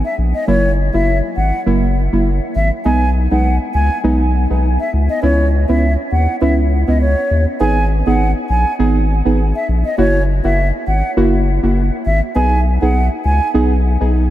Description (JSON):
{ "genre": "dancehall", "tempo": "101 BPM", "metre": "4/4", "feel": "swing 56% on 16ths", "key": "G# minor", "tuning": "A4 = 444 Hz", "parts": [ { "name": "mellow hollow silver concert flute", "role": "melody", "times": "0.0-13.5 s", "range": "C#5 to G#5", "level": "-20 LUFS", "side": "equal", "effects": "diffuse ambient delay" }, { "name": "saturated sub bass", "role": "bass", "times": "0.0-14.3 s", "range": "F#1 to D#2", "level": "-15 LUFS", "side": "equal", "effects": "none" }, { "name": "deep mellow chord stab", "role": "accompaniment", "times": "0.5-14.2 s", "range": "F#3 to G#4", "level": "-18 LUFS", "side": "right 2 dB", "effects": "chorus" } ], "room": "moderate huge ambient reverb, RT60 8.4 s", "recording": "dreamy mix soaked in reverb", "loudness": "-13 LUFS", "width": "side -13 dB against mid", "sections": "0.0-7.6 A section; 7.6-14.3 B section", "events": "none", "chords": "0.5 F#7; 2.9 B6; 5.2 C#m7; 7.6 G#m; 10.0 F#7; 12.4 B6" }